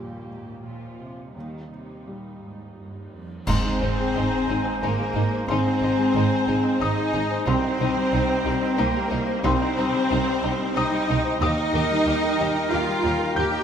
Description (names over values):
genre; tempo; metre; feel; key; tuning
cinematic, emotional film score for orchestra; 91 BPM; 3/4; rubato; unclear; A4 = 440 Hz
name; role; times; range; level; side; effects
felt-muted upright piano; accompaniment; 0.0-13.6 s; C2 to G6; -28 LUFS; left 1 dB; none
warm studio viola section; accompaniment; 0.0-13.6 s; F3 to G4; -32 LUFS; right 2 dB; none
rich studio cello section; bass; 0.0-13.6 s; F2 to G4; -28 LUFS; right 1 dB; none
rich studio violin section; melody; 3.5-13.5 s; Eb4 to G4; -33 LUFS; left 4 dB; none
bright large flute ensemble; second line; 3.5-13.6 s; G5 to Ab5; -34 LUFS; equal; none
clear clarinet; second line; 3.5-13.6 s; Eb4; -34 LUFS; left 1 dB; none
mellow oboe; second line; 3.5-13.6 s; Bb4 to C5; -36 LUFS; equal; none
rich studio violin section; second line; 3.5-13.6 s; Bb4 to G5; -33 LUFS; left 3 dB; none
mellow French horn section; sustained chords; 3.5-13.6 s; Bb3 to G4; -29 LUFS; left 4 dB; none
rich studio double bass section; bass; 3.5-13.4 s; Ab1 to Eb2; -28 LUFS; right 3 dB; none
clash cymbals and concert bass drum; percussion; 3.5-4.8 s; none; -30 LUFS; equal; none
room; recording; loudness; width
wet scoring stage reverb, RT60 2.0 s; none; -20 LUFS; side -8 dB against mid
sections
0.0-3.5 A section; 3.5-13.6 B section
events
band accent 3.5-4.1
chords
0.0 Ebadd9; 3.5 Ab; 7.5 Cm; 11.4 Eb